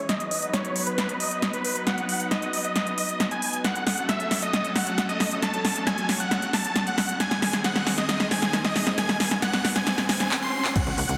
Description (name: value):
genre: uplifting trance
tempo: 135 BPM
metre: 4/4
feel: straight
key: unclear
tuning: A4 = 440 Hz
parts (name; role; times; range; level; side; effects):
- big supersaw lead; melody; 0.0-11.2 s; B4 to B#5; -30 LUFS; equal; sidechain pumping, low-pass filter, digital delay
- lush unison pad; sustained chords; 0.0-11.2 s; C#3 to B4; -35 LUFS; equal; chorus, sidechain pumping
- big-room dance drum kit; drums; 0.1-11.2 s; crash cymbal, handclaps, hi-hat, snare drum; -28 LUFS; equal; overdrive
- riser and impact; sound effects; 5.3-11.2 s; none; -38 LUFS; equal; none
- electronic kick drum; drums; 10.8 s; none; -28 LUFS; equal; none
- tight sequencer bass; bass; 10.9-11.2 s; C#2; -30 LUFS; equal; sidechain pumping
room: moderate huge ambient reverb, RT60 5.0 s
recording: dense, heavily limited modern master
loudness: -25 LUFS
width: mono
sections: 0.0-10.8 A section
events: build-up 0.0-10.8; drum fill 0.0-10.3, 10.3-10.8; filter sweep on supersaw synth 0.0-10.8; impact 10.8-11.2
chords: 0.1 B; 3.6 F#m; 7.2 G#